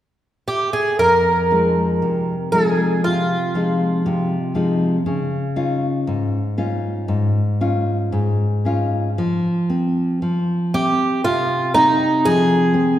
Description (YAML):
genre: fado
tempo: 59 BPM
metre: 2/4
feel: rubato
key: F minor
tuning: A4 = 440 Hz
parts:
  - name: fingerpicked twelve-string acoustic guitar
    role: melody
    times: 0.5-4.5, 10.7-13.0 s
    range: Eb4 to Bb4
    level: -17 LUFS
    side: right 1 dB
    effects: none
  - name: nylon-string guitar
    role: accompaniment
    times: 1.0-13.0 s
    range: F2 to F4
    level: -18 LUFS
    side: left 1 dB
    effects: none
room: wet scoring stage reverb, RT60 1.6 s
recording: recorded in a church or concert hall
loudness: -16 LUFS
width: side -12 dB against mid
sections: 1.0-9.2 A section; 9.2-13.0 B section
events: none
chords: 0.0 N.C.; 1.0 Fm7; 5.1 Dbadd9; 9.2 F5